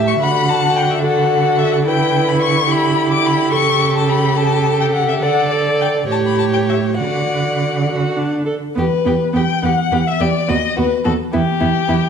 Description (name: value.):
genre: quick classical-period movement for string quartet.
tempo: 71 BPM (dotted quarters).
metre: 6/8.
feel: rubato.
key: D major, E minor from 8.8 s.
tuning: A4 = 440 Hz.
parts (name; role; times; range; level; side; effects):
dark violin; second line; 0.0-12.0 s; E4 to F#5; -21 LUFS; left 2 dB; none.
rich viola; accompaniment; 0.0-12.0 s; B3 to A4; -20 LUFS; right 3 dB; none.
rich cello; bass; 0.0-12.0 s; D#2 to D3; -19 LUFS; right 4 dB; none.
dark violin; melody; 0.1-12.1 s; G4 to D6; -19 LUFS; left 8 dB; none.
room: wet recital hall reverb, RT60 1.3 s.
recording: lossy compression artefacts.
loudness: -14 LUFS.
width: side -7 dB against mid.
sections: 0.0-8.8 A section; 8.8-12.1 B section.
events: none.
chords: 0.2 D; 1.9 Em7/D; 3.5 A7/C#; 5.2 D5; 6.1 A7; 7.0 D; 8.8 Em; 10.5 B/D#; 11.3 Em.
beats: | 0.22 1.04 | 1.87 2.70 | 3.53 4.37 | 5.21 6.08 | 6.97 7.88 | 8.77 9.63 | 10.49 11.34.